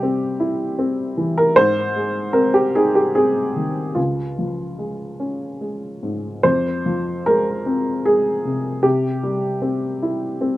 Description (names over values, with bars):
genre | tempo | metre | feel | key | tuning
neoclassical minimalist piano | 74 BPM | 3/4 | uneven beats, rubato | F minor | A4 = 440 Hz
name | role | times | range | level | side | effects
warm upright piano | solo | 0.0-10.6 s | Db2 to C5 | -18 LUFS | equal | none
room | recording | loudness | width
little or no reverb | recorded outdoors, with no room sound | -17 LUFS | side -16 dB against mid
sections
0.0-10.6 A section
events
none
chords
0.0 C; 1.6 Ab; 4.0 Db; 6.4 Fm; 8.8 C